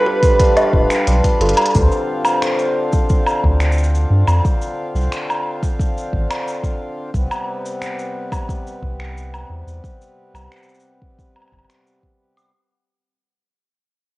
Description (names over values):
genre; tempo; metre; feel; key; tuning
folktronica; 89 BPM; 4/4; straight; unclear; A4 = 440 Hz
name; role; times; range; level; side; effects
breathy flugelhorn; melody; 0.0-1.1 s; B4; -19 LUFS; right 1 dB; cassette tape, tape echo
kalimba; second line; 0.0-1.7 s; A4 to B4; -23 LUFS; right 1 dB; cassette tape, tape echo
pedal harmonium; sustained chords; 0.0-12.5 s; C3 to B4; -24 LUFS; equal; cassette tape
hammered dulcimer; arpeggios; 0.0-7.4 s; G3 to A4; -27 LUFS; left 2 dB; cassette tape, tape echo
electronic kick drum; drums; 0.2-12.2 s; none; -18 LUFS; equal; cassette tape
organic electronic drum kit; drums; 0.2-12.5 s; finger snaps, hi-hat, shaker, woodblock; -22 LUFS; equal; cassette tape
round analog bass; bass; 0.7-11.7 s; D1 to G2; -17 LUFS; equal; none
room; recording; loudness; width
light reverb, studio ambience; home recording on cassette; -15 LUFS; side -20 dB against mid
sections
0.0-1.8 A section; 1.8-12.5 B section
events
drum fill 1.4-1.8; fade-out 1.8-12.5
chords
0.0 G7; 1.8 Dm7; 7.1 Gadd11